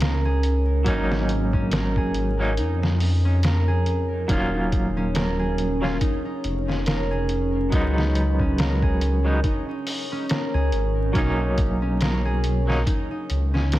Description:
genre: trip hop.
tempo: 70 BPM.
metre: 4/4.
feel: swing 57% on 16ths.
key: Eb minor.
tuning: A4 = 439 Hz.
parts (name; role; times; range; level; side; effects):
deep dark ambient pad; sustained chords; 0.0-13.8 s; Db4 to Db5; -31 LUFS; equal; chorus, built-in reverb.
concert harp; arpeggios; 0.0-13.8 s; Db4 to A#4; -29 LUFS; right 1 dB; digital delay.
dark detuned saw bass; bass; 0.0-13.8 s; Eb1 to F2; -23 LUFS; equal; none.
trip hop sampler-style drum kit; drums; 0.0-13.8 s; hi-hat, kick drum, snare drum; -25 LUFS; equal; studio reverb.
semi-hollow electric guitar; accompaniment; 0.8-12.8 s; Gb3 to F4; -28 LUFS; equal; tremolo, tape echo.
room: digital ambience.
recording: vinyl crackle.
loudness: -20 LUFS.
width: side -16 dB against mid.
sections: 0.0-13.8 A section.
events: none.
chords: 0.0 Bmaj7 (rootless); 0.9 Ab9sus4; 4.3 Ebm7; 7.7 Db9sus4; 11.2 Bmaj7.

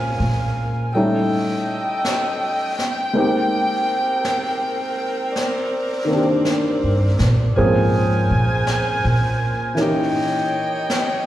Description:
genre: jazz ballad.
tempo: 54 BPM.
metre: 4/4.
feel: swing 67% on 8ths.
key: unclear.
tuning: A4 = 440 Hz.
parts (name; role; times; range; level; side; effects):
warm baby grand piano; accompaniment; 0.0-11.3 s; Eb3 to Ab4; -22 LUFS; equal; slapback echo.
clear saxophone section; sustained chords; 0.0-11.3 s; C4 to Ab5; -22 LUFS; equal; none.
upright bass; bass; 0.0-10.1 s; G2 to Bb2; -19 LUFS; equal; none.
brushed snare drum and snare drum; drums; 0.9-11.3 s; none; -29 LUFS; equal; slapback echo.
room: light reverb, small room ambience.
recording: live gig heard through the venue's PA, recital hall reverb.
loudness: -17 LUFS.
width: side -13 dB against mid.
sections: 0.0-11.3 A section.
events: upright bass solo 0.0-11.3.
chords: 0.0 Bbm7; 0.9 A7#11; 3.1 Abmaj9; 5.3 Cm9; 7.6 Bbm9; 9.8 Eb7b9.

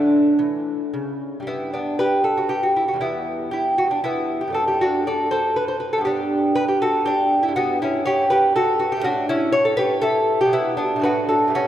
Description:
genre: classical, baroque-style dance for lute.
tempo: 119 BPM.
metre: 3/4.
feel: rubato.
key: G major, D major from 7.6 s.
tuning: A4 = 439 Hz.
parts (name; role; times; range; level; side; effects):
lute; solo; 0.0-11.7 s; E2 to D5; -18 LUFS; equal; none.
room: wet church reverb, RT60 3.1 s.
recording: recorded in a church or concert hall.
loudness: -18 LUFS.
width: side -11 dB against mid.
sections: 0.0-1.5 A section; 1.5-11.7 A section.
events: none.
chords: 0.0 D5; 1.5 G; 4.6 D/F#; 6.1 G; 7.6 Gmaj9#11; 9.0 A; 10.5 Bm; 11.0 D/A.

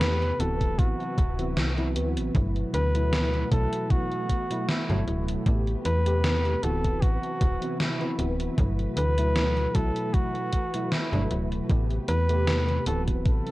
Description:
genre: vaporwave.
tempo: 77 BPM.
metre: 4/4.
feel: swing 54% on 16ths.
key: G major.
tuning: A4 = 439 Hz.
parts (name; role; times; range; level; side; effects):
warm flugelhorn; melody; 0.0-13.5 s; E4 to B4; -31 LUFS; equal; vintage 12-bit sampler grit, tape echo.
tine electric piano; accompaniment; 0.0-13.5 s; B2 to G4; -31 LUFS; equal; ensemble chorus, tape echo.
soft string machine; sustained chords; 0.0-13.5 s; C3 to B4; -37 LUFS; equal; ensemble chorus.
slap-like FM bass; bass; 0.0-13.4 s; D1 to E2; -27 LUFS; equal; none.
gated 80s digital drum machine; drums; 0.0-13.5 s; hi-hat, snare drum; -30 LUFS; equal; gated reverb, gated reverb snare.
electronic kick drum; drums; 0.6-13.4 s; none; -24 LUFS; equal; none.
room: digital ambience.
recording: worn, warbling old tape, cassette tape, warbly pitch drift.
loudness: -23 LUFS.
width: side -18 dB against mid.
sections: 0.0-13.5 A section.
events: none.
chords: 0.4 D13; 2.3 Gmaj13; 5.5 Am9; 6.6 D13; 8.6 Gmaj13; 11.7 Am9; 12.9 D13.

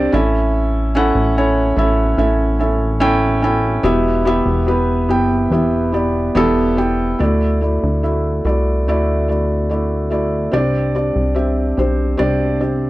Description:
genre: pop ballad.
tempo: 72 BPM.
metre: 4/4.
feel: straight.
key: unclear.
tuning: A4 = 441 Hz.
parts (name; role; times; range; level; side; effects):
felt-muted upright piano; accompaniment; 0.0-12.9 s; G2 to G5; -16 LUFS; equal; none.
plucky analog bass; bass; 0.0-12.9 s; E1 to D2; -19 LUFS; equal; none.
room: little or no reverb.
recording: dry, close 1970s-style studio recording.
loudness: -14 LUFS.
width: side -17 dB against mid.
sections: 0.0-7.2 A section; 7.2-12.9 B section.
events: none.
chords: 0.1 A; 3.8 Em; 7.2 Dadd9; 10.5 Csus2.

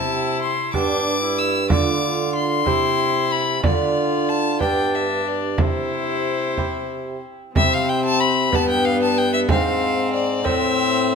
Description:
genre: classical, renaissance-style consort dance.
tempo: 62 BPM (dotted quarters).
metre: 6/8.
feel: straight.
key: C major.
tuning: A4 = 440 Hz.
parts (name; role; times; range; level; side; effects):
rich violin; melody; 0.0-11.2 s; C5 to E6; -22 LUFS; left 5 dB; none.
lute; accompaniment; 0.0-11.2 s; G2 to C5; -26 LUFS; right 7 dB; none.
warm viola; accompaniment; 0.0-11.2 s; B3 to F4; -25 LUFS; left 4 dB; none.
dark bassoon; bass; 0.0-11.2 s; G2 to D3; -24 LUFS; right 2 dB; none.
frame drum; percussion; 0.7-10.8 s; none; -22 LUFS; right 2 dB; none.
room: moderate stone room reverb, RT60 1.3 s.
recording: none.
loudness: -18 LUFS.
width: side -6 dB against mid.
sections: 0.0-7.6 A section; 7.6-11.2 A section.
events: none.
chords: 0.0 C; 0.7 G; 1.7 Dm; 2.7 C; 3.6 Dm; 4.6 G; 5.6 C; 8.5 G; 9.5 Ab; 10.5 Am.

